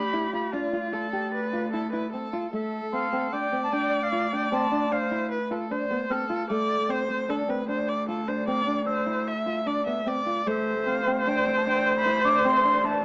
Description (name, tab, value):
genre	contemporary instrumental, chamber music in an uneven meter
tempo	151 BPM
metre	5/4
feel	straight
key	D dorian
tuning	A4 = 436 Hz
part	jazz flute	melody	0.0-5.3, 10.5-13.0 s	D5 to D6	-27 LUFS	equal	none
part	clear viola	second line	0.0-13.0 s	F4 to E5	-28 LUFS	equal	none
part	dark cello	bass	0.0-13.0 s	D2	-33 LUFS	equal	none
part	nylon-string guitar	arpeggios	0.1-13.0 s	A3 to G4	-29 LUFS	equal	none
part	large celesta	texture	2.9-9.3, 12.3-12.7 s	C6 to F6	-33 LUFS	equal	none
part	rich studio string section	sustained chords	10.5-13.0 s	C3 to A3	-37 LUFS	equal	none
room	moderate studio reverb, RT60 0.8 s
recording	worn, warbling old tape, cassette tape, warbly pitch drift, small speaker sound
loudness	-23 LUFS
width	side -33 dB against mid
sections	0.0-2.5 A section; 2.5-13.0 B section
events	none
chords	0.0 Em/D; 0.5 Dmadd9; 2.5 Dm7; 10.5 Am/D